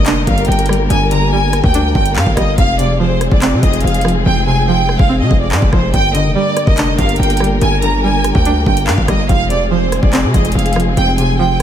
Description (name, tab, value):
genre	hip hop, drill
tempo	143 BPM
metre	4/4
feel	half-time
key	G phrygian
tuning	A4 = 440 Hz
part	rich studio violin section	melody	0.0-11.6 s	C5 to Bb5	-18 LUFS	right 1 dB	tape echo
part	string-like resonator pluck	accompaniment	0.0-11.6 s	F2 to D4	-19 LUFS	right 2 dB	chorus
part	dark symphonic string section	sustained chords	0.0-11.6 s	D3 to Bb4	-20 LUFS	left 1 dB	none
part	distorted 808-style bass	bass	0.0-11.6 s	F1 to C3	-16 LUFS	equal	distortion
part	drill drum kit	drums	0.1-11.6 s	handclaps, hi-hat, kick drum, rim click	-16 LUFS	equal	none
room	light reverb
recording	none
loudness	-11 LUFS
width	side -10 dB against mid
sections	0.0-11.6 A section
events	hi-hats muted 4.3-5.9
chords	0.0 Gm; 2.6 Fm; 5.9 Gm; 9.3 Fm